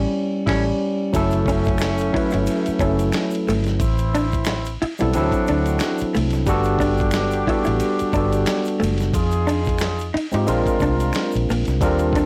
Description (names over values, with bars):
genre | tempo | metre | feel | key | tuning
R&B, neo-soul | 90 BPM | 4/4 | swing 56% on 16ths | unclear | A4 = 440 Hz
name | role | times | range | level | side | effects
tine electric piano | accompaniment | 0.0-12.3 s | E3 to C#5 | -24 LUFS | equal | none
vintage muted fingered electric bass | bass | 0.0-12.3 s | F#1 to Ab2 | -25 LUFS | equal | transformer saturation
warm horn section | stabs | 0.5-12.3 s | E3 to Bb4 | -30 LUFS | equal | none
dusty soul sampler-style drum kit | drums | 0.5-12.3 s | crash cymbal, kick drum, ride cymbal, snare drum | -29 LUFS | equal | none
tube shaker and finger snaps | percussion | 1.1-12.3 s | none | -40 LUFS | equal | none
vintage hollow-body jazz guitar | second line | 1.5-12.3 s | A3 to E4 | -26 LUFS | equal | none
room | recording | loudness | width
light reverb | blown-out, overdriven recording, overdrive | -20 LUFS | mono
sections
0.0-1.1 A section; 1.1-12.3 A section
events
band accent 0.0-1.1; tine electric piano solo 0.0-1.1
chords
0.0 A7; 1.1 F#m7; 3.8 Amadd9; 5.1 D7; 6.5 Gmaj9; 9.1 Fm7; 10.5 Bb7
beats
0.47 | 1.13 1.80 2.47 3.13 | 3.80 4.47 5.13 5.80 | 6.47 7.13 7.80 8.47 | 9.13 9.80 10.47 11.13 | 11.80